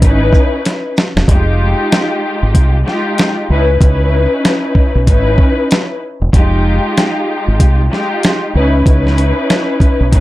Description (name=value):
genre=hip hop, boom-bap hip-hop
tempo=95 BPM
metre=4/4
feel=swing 60% on 16ths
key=F minor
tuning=A4 = 441 Hz
part: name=rich studio string section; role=accompaniment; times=0.0-10.2 s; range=Ab3 to Cb5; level=-15 LUFS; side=left 1 dB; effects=cassette tape, high-pass filter, low-pass filter
part: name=deep dub fingered electric bass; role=bass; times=0.0-10.2 s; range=Fb1 to Db2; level=-13 LUFS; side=equal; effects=none
part: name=dusty soul sampler-style drum kit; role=drums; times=0.0-10.2 s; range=hi-hat, kick drum, shaker, snare drum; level=-11 LUFS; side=equal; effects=none
room=light reverb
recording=none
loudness=-10 LUFS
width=side -16 dB against mid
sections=0.0-1.3 A section; 1.3-10.2 B section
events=drum fill 0.7-1.3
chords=0.0 Dbm9; 1.3 Fm9; 3.5 Dbm9; 6.3 Fm9; 8.5 Dbm9